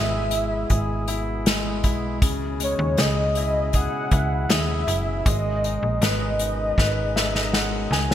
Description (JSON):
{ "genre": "pop ballad", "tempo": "79 BPM", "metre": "4/4", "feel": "straight", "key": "G# minor", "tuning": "A4 = 438 Hz", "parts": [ { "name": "warm velvety synth lead", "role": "melody", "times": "0.0-7.9 s", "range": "C#5 to F#5", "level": "-27 LUFS", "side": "equal", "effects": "chorus, digital delay" }, { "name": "clear concert grand piano", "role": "accompaniment", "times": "0.0-8.1 s", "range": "C#3 to G#5", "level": "-28 LUFS", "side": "left 2 dB", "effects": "none" }, { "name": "percussive tonewheel organ", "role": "sustained chords", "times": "0.0-8.1 s", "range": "B2 to G#4", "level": "-33 LUFS", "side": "right 1 dB", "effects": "wide subtle chorus" }, { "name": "slap-like FM bass", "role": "bass", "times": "0.0-8.1 s", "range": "F#1 to D#2", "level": "-26 LUFS", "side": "equal", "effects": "none" }, { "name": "unplugged drum kit", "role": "drums", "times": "0.3-8.1 s", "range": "hi-hat, kick drum, snare drum", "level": "-23 LUFS", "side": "equal", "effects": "gated reverb" } ], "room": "moderate plate reverb, RT60 3.5 s", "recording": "bright 1980s-style digital production", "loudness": "-20 LUFS", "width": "side -11 dB against mid", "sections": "0.0-8.1 A section", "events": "drum fill 6.8-8.1; grand piano fill 6.8-8.1", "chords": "0.0 E/G#; 2.2 C#madd9; 5.3 G#m" }